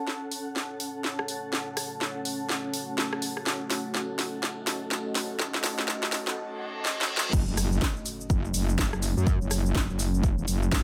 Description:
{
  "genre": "bass house",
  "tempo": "124 BPM",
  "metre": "4/4",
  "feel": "swing 61% on 16ths",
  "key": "F# dorian",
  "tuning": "A4 = 439 Hz",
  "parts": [
    { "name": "deep dark ambient pad", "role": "sustained chords", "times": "1.2-10.8 s", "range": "A3 to D#5", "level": "-40 LUFS", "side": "equal", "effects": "chorus, built-in reverb, sidechain pumping" },
    { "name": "granular cloud pad", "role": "texture", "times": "0.0-6.4 s", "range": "C#4 to A5", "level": "-39 LUFS", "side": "equal", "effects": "built-in reverb, sidechain pumping" },
    { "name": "house drum kit", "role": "drums", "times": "0.1-10.8 s", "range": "crash cymbal, hi-hat, rim click, shaker, snare drum", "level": "-32 LUFS", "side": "equal", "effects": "overdrive, high-pass filter on hats, small room ambience, high-pass filter on snare, high-pass filter on cymbals, high-pass filter on perc" },
    { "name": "reverse cymbal and impact", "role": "sound effects", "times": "6.5-9.3 s", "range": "none", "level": "-38 LUFS", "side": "equal", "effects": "none" },
    { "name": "metallic wobble bass", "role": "bass", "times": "7.3-10.8 s", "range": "E1 to F#2", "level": "-29 LUFS", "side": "equal", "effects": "distortion, chorus, tube saturation, sidechain pumping" },
    { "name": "electronic kick drum", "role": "drums", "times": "7.3-10.8 s", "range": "none", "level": "-28 LUFS", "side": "equal", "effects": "overdrive, small room ambience" }
  ],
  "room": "light reverb",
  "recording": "high-pass filter",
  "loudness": "-29 LUFS",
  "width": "mono",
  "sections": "0.0-7.3 A section; 7.3-10.8 B section",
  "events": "build-up 0.0-7.3; drum fill 0.0-6.4, 6.8-7.3; reverse cymbal 6.5-7.3; drop 7.3-10.8; impact 7.3-9.3",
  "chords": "0.0 F#m",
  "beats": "0.07 0.56 1.04 | 1.52 2.01 2.49 2.98 | 3.46 3.94 4.43 4.91 | 5.40 5.88 6.36 6.85 | 7.33 7.82 8.30 8.78 | 9.27 9.75 10.23 10.72"
}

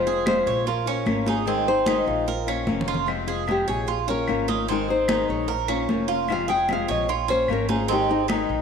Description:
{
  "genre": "latin, Cuban son and guajira",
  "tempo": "150 BPM",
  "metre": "4/4",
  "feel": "straight",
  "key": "unclear",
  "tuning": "A4 = 438 Hz",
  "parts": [
    { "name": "nylon-string guitar", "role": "melody", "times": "0.0-8.2 s", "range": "Eb4 to G5", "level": "-25 LUFS", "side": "left 1 dB", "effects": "none" },
    { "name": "flamenco guitar", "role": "accompaniment", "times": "0.0-8.6 s", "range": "C3 to Ab4", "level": "-27 LUFS", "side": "left 10 dB", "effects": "none" },
    { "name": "Cuban tres", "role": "arpeggios", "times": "0.0-8.6 s", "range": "C4 to Db5", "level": "-27 LUFS", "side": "right 12 dB", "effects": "none" },
    { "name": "upright bass", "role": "bass", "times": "0.0-8.6 s", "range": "F1 to Bb1", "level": "-32 LUFS", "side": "right 2 dB", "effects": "none" },
    { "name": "congas", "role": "percussion", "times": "0.1-8.6 s", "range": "none", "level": "-30 LUFS", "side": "equal", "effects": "none" },
    { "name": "claves", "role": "percussion", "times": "0.3-8.5 s", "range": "none", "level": "-37 LUFS", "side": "left 1 dB", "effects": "none" }
  ],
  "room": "moderate plate reverb, RT60 2.7 s",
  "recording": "1960s-style stereo with parts hard left and right",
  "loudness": "-21 LUFS",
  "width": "side -6 dB against mid",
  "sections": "0.0-3.1 A section; 3.1-8.6 B section",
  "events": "drum fill 2.7-3.1; nylon-string guitar solo 3.1-8.6",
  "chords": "0.0 Fm; 0.7 Bbm; 1.5 Ab; 2.3 Bbm; 3.1 Fm; 3.9 Bbm; 4.7 Ab; 5.5 Bbm; 6.3 Fm; 7.1 Bbm; 7.9 Ab",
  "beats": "0.27 0.67 1.07 | 1.47 1.87 2.27 2.67 | 3.08 3.48 3.88 4.28 | 4.68 5.08 5.48 5.88 | 6.29 6.69 7.09 7.49 | 7.89 8.29"
}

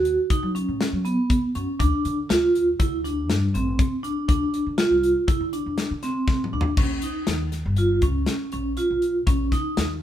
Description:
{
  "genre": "progressive instrumental, band music in an uneven meter",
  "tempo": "120 BPM",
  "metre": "5/4",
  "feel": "straight",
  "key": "unclear",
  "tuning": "A4 = 440 Hz",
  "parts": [
    { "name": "vibraphone with medium hard mallets", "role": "arpeggios", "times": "0.0-9.9 s", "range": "Cb4 to Gb4", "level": "-23 LUFS", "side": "right 2 dB", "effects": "none" },
    { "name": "upright bass", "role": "bass", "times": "0.0-10.0 s", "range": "G1 to Gb3", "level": "-27 LUFS", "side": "equal", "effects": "none" },
    { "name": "modern studio drum kit", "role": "drums", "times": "0.1-9.9 s", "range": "crash cymbal, hi-hat, kick drum, snare drum, toms", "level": "-24 LUFS", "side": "left 2 dB", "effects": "none" }
  ],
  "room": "light reverb",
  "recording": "minimal, uncompressed stereo recording",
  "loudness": "-20 LUFS",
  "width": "side -11 dB against mid",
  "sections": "0.0-6.8 A section; 6.8-10.0 B section",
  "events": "drum fill 6.3-6.8",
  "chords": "0.0 Gb5; 1.8 Dm; 6.8 Bbm",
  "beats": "0.30 0.80 1.30 | 1.80 2.29 2.79 3.29 3.79 | 4.29 4.79 5.29 5.78 6.28 | 6.78 7.28 7.78 8.28 8.78 | 9.27 9.77"
}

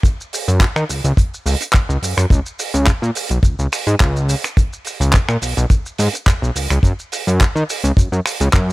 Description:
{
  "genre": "nu-disco, nu disco",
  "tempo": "106 BPM",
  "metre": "4/4",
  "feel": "swing 54% on 16ths",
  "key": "F# major",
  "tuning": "A4 = 440 Hz",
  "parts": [
    { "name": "damped 70s drum kit", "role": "drums", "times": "0.0-8.7 s", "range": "finger snaps, handclaps, hi-hat, shaker", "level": "-21 LUFS", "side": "right 1 dB", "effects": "none" },
    { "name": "kick drum", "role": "drums", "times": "0.0-8.7 s", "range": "none", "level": "-13 LUFS", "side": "equal", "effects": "none" },
    { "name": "fat analog bass", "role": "bass", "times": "0.5-8.7 s", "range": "B1 to D#3", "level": "-16 LUFS", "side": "equal", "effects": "none" }
  ],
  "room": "little or no reverb",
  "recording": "none",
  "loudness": "-14 LUFS",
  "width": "side -20 dB against mid",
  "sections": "0.0-8.7 A section",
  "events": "none",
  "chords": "none",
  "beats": "| 0.04 0.61 1.18 1.74 | 2.31 2.87 3.44 4.00 | 4.57 5.14 5.70 6.27 | 6.83 7.40 7.97 8.53"
}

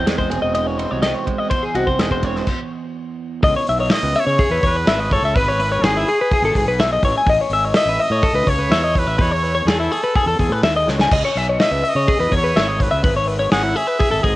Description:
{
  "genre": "math rock and midwest emo",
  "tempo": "125 BPM",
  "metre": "4/4",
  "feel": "straight",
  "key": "unclear",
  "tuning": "A4 = 440 Hz",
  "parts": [
    { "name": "electric guitar through a small old amp", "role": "accompaniment", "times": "0.0-4.4 s", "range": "E2 to F#4", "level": "-26 LUFS", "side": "right 8 dB", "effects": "spring reverb, cassette tape" },
    { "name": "twelve-string electric guitar", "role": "arpeggios", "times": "0.0-14.4 s", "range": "E4 to G#5", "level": "-19 LUFS", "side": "left 2 dB", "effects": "spring reverb, cassette tape, analog delay" },
    { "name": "fuzz fingered electric bass", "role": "bass", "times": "0.0-14.3 s", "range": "E1 to C#3", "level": "-23 LUFS", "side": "equal", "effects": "overdrive" },
    { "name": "loose indie drum kit", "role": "drums", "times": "0.1-14.4 s", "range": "crash cymbal, hi-hat, kick drum, ride cymbal, snare drum", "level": "-21 LUFS", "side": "equal", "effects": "cassette tape" },
    { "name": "brilliant trumpet", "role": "melody", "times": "3.9-14.4 s", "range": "G#4 to F#5", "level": "-22 LUFS", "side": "right 2 dB", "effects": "none" }
  ],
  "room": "little or no reverb",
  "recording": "home recording on cassette",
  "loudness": "-15 LUFS",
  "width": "side -17 dB against mid",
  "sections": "0.0-3.4 A section; 3.4-14.4 B section",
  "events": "stop 2.5-3.4; drum fill 10.9",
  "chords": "0.0 G#7/E; 3.4 C#m7",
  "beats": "0.07 0.56 1.04 | 1.52 2.00 2.48 2.96 | 3.44 3.92 4.40 4.88 | 5.36 5.84 6.32 6.80 | 7.28 7.75 8.23 8.71 | 9.20 9.68 10.16 10.64 | 11.12 11.60 12.08 12.56 | 13.04 13.52 14.00"
}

